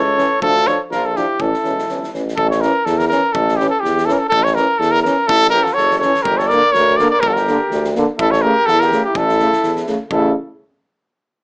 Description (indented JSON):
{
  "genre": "balkan folk, Balkan brass band",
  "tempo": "124 BPM",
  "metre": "2/4",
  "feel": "swing 55% on 16ths",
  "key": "A phrygian dominant",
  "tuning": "A4 = 443 Hz",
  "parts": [
    { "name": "warm trumpet", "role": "melody", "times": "0.0-10.3 s", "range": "G4 to D5", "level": "-15 LUFS", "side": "equal", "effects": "none" },
    { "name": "mellow flugelhorn", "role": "second line", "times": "0.0-2.1, 5.3-10.3 s", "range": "E4 to Bb4", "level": "-22 LUFS", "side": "equal", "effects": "none" },
    { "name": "clear trombone", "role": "accompaniment", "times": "0.0-10.3 s", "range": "C#3 to F3", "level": "-23 LUFS", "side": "equal", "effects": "none" },
    { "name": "warm euphonium", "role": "accompaniment", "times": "0.0-10.3 s", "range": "A3 to D4", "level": "-23 LUFS", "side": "equal", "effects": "none" },
    { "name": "warm tuba", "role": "bass", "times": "0.0-10.3 s", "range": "E1 to E2", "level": "-20 LUFS", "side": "equal", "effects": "none" },
    { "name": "loose indie drum kit", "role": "percussion", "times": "0.2-10.3 s", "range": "kick drum, snare drum", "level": "-31 LUFS", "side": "equal", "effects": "none" }
  ],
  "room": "moderate small room reverb, RT60 0.5 s",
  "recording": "small speaker sound",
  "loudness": "-13 LUFS",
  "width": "side -36 dB against mid",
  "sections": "0.0-2.4 A section; 2.4-10.1 B section",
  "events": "none",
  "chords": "0.4 Dm; 1.4 A; 6.3 Gm; 8.2 A",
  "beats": "| 0.42 0.91 | 1.40 1.89 | 2.38 2.86 | 3.35 3.84 | 4.32 4.80 | 5.29 5.77 | 6.25 6.74 | 7.22 7.70 | 8.18 8.66 | 9.15 9.63 | 10.11"
}